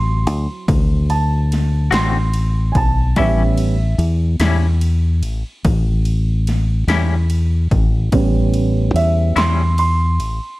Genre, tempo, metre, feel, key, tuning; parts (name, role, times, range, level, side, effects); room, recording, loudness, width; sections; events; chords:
slow blues; 48 BPM (dotted quarters); 12/8; straight; A4 = 440 Hz
dark grand piano; accompaniment; 0.0-10.6 s; F#3 to C6; -21 LUFS; right 3 dB
fingered electric bass; bass; 0.0-10.4 s; A1 to E2; -16 LUFS; left 1 dB
big-room dance drum kit; drums; 0.3-10.4 s; kick drum, ride cymbal, snare drum; -20 LUFS; equal; overdrive
semi-hollow electric guitar; accompaniment; 1.9-9.6 s; A2 to F#4; -22 LUFS; left 5 dB; tremolo
digital ambience; dark, warm production; -14 LUFS; side -19 dB against mid
0.0-10.6 A section
grand piano solo 0.0-10.6
0.0 D7; 3.2 A7